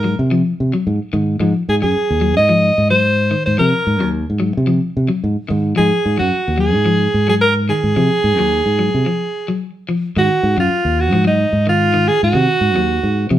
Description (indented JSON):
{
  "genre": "afrobeat",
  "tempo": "110 BPM",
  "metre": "4/4",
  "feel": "swing 54% on 16ths",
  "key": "Ab mixolydian",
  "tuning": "A4 = 440 Hz",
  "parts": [
    { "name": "breathy alto saxophone", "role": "melody", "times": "0.0-13.3 s", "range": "Eb4 to Eb5", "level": "-16 LUFS", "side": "right 1 dB", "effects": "none" },
    { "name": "electric guitar at the edge of break-up", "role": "arpeggios", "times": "0.0-13.4 s", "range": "Eb3 to Gb3", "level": "-20 LUFS", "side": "left 3 dB", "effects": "none" },
    { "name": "fingered electric bass", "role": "bass", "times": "0.0-13.4 s", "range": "Eb2 to C3", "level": "-17 LUFS", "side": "equal", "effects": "none" }
  ],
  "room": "moderate studio reverb, RT60 0.8 s",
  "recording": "band playing live in one room",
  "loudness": "-13 LUFS",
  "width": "side -12 dB against mid",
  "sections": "0.0-10.2 A section; 10.2-13.4 A section",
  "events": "break 9.1-10.2",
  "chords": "0.0 Ab7(no3)",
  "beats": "0.32 0.86 | 1.41 1.95 2.50 3.05 | 3.59 4.14 4.68 5.23 | 5.78 6.33 6.87 7.42 | 7.97 8.51 9.06 9.61 | 10.15 10.70 11.25 11.79 | 12.34 12.89"
}